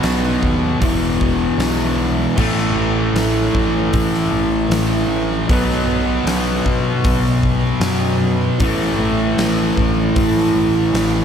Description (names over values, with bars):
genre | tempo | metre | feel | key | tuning
rock, shoegaze and dream pop | 77 BPM | 4/4 | straight | unclear | A4 = 440 Hz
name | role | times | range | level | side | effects
fuzz guitar | riff | 0.0-11.2 s | E2 to B3 | -16 LUFS | equal | distortion, wide subtle chorus
growling picked electric bass | bass | 0.0-11.2 s | E1 to B2 | -22 LUFS | equal | overdrive
huge arena drum kit | drums | 0.0-11.1 s | crash cymbal, hi-hat, kick drum, snare drum | -22 LUFS | equal | none
room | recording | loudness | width
moderate lush hall reverb, RT60 2.8 s | dreamy mix soaked in reverb | -15 LUFS | side -8 dB against mid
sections
0.0-2.4 A section; 2.4-11.2 A section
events
none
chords
0.0 B5; 0.8 E5; 2.4 A5; 5.5 B5; 8.6 A5